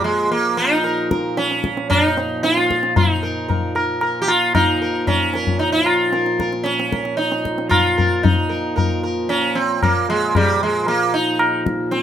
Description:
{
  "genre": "indian classical, Hindustani",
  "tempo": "114 BPM",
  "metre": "5/4",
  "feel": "straight",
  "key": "Bb raga bhimpalasi",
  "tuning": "A4 = 443 Hz",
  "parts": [
    { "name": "sitar", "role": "melody", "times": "0.0-12.0 s", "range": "G3 to Bb4", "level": "-18 LUFS", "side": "right 1 dB", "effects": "none" },
    { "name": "hand-pumped harmonium", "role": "drone", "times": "0.0-12.0 s", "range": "Bb2 to F3", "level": "-26 LUFS", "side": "equal", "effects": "none" },
    { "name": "tabla", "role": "percussion", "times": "0.3-12.0 s", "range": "none", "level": "-20 LUFS", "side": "left 2 dB", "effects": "none" }
  ],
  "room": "moderate studio ambience, RT60 0.5 s",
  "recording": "minimal, uncompressed stereo recording",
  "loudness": "-16 LUFS",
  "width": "side -9 dB against mid",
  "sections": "0.0-12.0 A section",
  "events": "none",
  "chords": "none",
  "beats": "| 0.31 0.84 1.38 1.91 2.43 | 2.96 3.49 4.02 4.55 5.08 | 5.61 6.14 6.66 7.19 7.72 | 8.25 8.77 9.30 9.82 10.35 | 10.88 11.40 11.93"
}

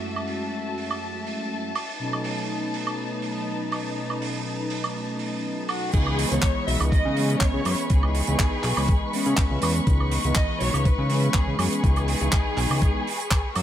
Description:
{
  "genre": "nu-disco, nu disco",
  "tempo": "122 BPM",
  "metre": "4/4",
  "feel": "swing 54% on 16ths",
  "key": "C# minor",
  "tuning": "A4 = 438 Hz",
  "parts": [
    { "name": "mellow synth brass", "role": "accompaniment", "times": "0.0-13.1 s", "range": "F#2 to E4", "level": "-29 LUFS", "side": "equal", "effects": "chorus, sidechain pumping" },
    { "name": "dark studio string section", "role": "sustained chords", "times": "0.0-13.6 s", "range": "A3 to E6", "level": "-32 LUFS", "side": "left 2 dB", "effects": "sidechain pumping" },
    { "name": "damped 70s drum kit", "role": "drums", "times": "0.2-13.6 s", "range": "crash cymbal, handclaps, hi-hat, woodblock", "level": "-30 LUFS", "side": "right 4 dB", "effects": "low-pass filter on hats, low-pass filter on cymbals, low-pass filter on snare, low-pass filter on perc, low-pass filter on room" },
    { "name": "dark studio violin section", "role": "melody", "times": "5.7-13.6 s", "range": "F#4 to E5", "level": "-30 LUFS", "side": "equal", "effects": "ping-pong delay" },
    { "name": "fat analog bass", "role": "bass", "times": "5.9-13.6 s", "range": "B1 to C#3", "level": "-24 LUFS", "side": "equal", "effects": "sidechain pumping" },
    { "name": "electronic kick drum", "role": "drums", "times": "5.9-13.4 s", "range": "none", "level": "-22 LUFS", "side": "equal", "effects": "none" }
  ],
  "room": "small room reverb",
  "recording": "none",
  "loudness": "-22 LUFS",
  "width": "side -11 dB against mid",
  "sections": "0.0-5.9 A section; 5.9-13.6 B section",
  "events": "drop 5.9-13.6",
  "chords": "0.0 F#m7; 2.0 B7; 5.9 C#m7",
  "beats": "| 0.03 0.53 1.02 1.51 | 2.00 2.49 2.98 3.48 | 3.97 4.46 4.95 5.44 | 5.93 6.43 6.92 7.41 | 7.90 8.39 8.89 9.38 | 9.87 10.36 10.85 11.35 | 11.84 12.33 12.82 13.31"
}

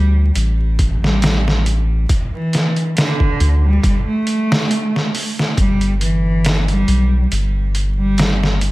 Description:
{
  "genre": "trip hop",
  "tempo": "69 BPM",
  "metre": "4/4",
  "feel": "swing 54% on 16ths",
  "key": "unclear",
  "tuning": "A4 = 439 Hz",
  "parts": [
    { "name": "rich cello", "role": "melody", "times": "0.0-8.6 s", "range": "D3 to A3", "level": "-20 LUFS", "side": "equal", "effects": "vintage 12-bit sampler grit, tape echo" },
    { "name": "soft dub sub bass", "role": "bass", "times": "0.0-8.7 s", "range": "G1 to D2", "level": "-16 LUFS", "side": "equal", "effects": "none" },
    { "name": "trip hop sampler-style drum kit", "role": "drums", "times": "0.4-8.7 s", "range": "hi-hat, kick drum, snare drum", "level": "-18 LUFS", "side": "equal", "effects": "none" }
  ],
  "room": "digital ambience",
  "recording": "vinyl crackle",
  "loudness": "-14 LUFS",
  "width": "side -19 dB against mid",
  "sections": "0.0-8.7 A section",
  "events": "none",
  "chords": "0.0 Gsus2; 5.6 G",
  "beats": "0.35 1.22 | 2.09 2.96 3.83 4.70 | 5.57 6.44 7.31 8.18"
}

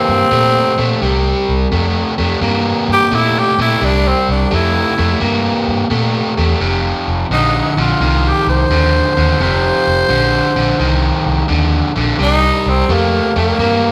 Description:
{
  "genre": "electric blues shuffle",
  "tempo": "86 BPM",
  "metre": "4/4",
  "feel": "swing 67% on 8ths",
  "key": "unclear",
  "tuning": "A4 = 441 Hz",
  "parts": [
    { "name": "growling tenor saxophone", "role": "melody", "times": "0.0-13.9 s", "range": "Bb3 to C5", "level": "-18 LUFS", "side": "equal", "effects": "none" },
    { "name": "biting overdriven guitar", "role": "riff", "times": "0.0-13.9 s", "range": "F2 to Bb3", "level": "-18 LUFS", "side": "equal", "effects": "spring reverb" },
    { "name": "vintage muted fingered electric bass", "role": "bass", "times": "0.1-13.9 s", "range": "F1 to Bb2", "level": "-20 LUFS", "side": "equal", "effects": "none" }
  ],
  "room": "wet large studio reverb, RT60 1.5 s",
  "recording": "band playing live in one room",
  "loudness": "-14 LUFS",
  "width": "mono",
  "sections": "0.0-13.9 A section",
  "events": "tenor saxophone solo 0.0-13.9",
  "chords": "0.0 C7(no3); 6.6 F5; 12.2 C7(no3)",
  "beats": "0.31 | 1.01 1.71 2.41 3.11 | 3.81 4.51 5.21 5.91 | 6.61 7.31 8.01 8.71 | 9.40 10.10 10.80 11.50 | 12.20 12.89 13.59"
}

